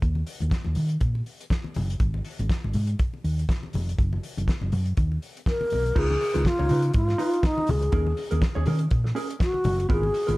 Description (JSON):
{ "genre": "disco", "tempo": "122 BPM", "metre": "4/4", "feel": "swing 56% on 16ths", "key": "unclear", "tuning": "A4 = 440 Hz", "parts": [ { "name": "hollow-body short-scale fingered electric bass", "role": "bass", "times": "0.0-10.4 s", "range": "E#1 to D#3", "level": "-25 LUFS", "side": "equal", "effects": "none" }, { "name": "warm soul drum kit", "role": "drums", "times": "0.0-10.4 s", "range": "crash cymbal, hi-hat, kick drum, snare drum", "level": "-27 LUFS", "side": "equal", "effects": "none" }, { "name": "congas", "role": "percussion", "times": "0.0-10.4 s", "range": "none", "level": "-34 LUFS", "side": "left 2 dB", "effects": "none" }, { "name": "breathy mellow wooden-headed alto flute", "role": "melody", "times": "5.5-10.4 s", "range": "D#4 to A#4", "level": "-26 LUFS", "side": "left 1 dB", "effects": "analog delay" }, { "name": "mellow electric guitar", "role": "accompaniment", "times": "6.0-10.4 s", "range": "B3 to C#5", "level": "-32 LUFS", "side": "right 3 dB", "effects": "spring reverb" } ], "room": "small room ambience", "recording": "none", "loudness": "-22 LUFS", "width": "side -20 dB against mid", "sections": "0.0-6.0 A section; 6.0-10.4 B section", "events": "none", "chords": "0.0 D#5; 2.0 G#5; 4.0 F#; 6.0 C#9; 7.9 D#7sus4", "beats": "| 0.02 0.52 1.01 1.51 | 2.00 2.50 2.99 3.49 | 3.98 4.47 4.97 5.46 | 5.96 6.45 6.94 7.43 | 7.93 8.42 8.91 9.41 | 9.90" }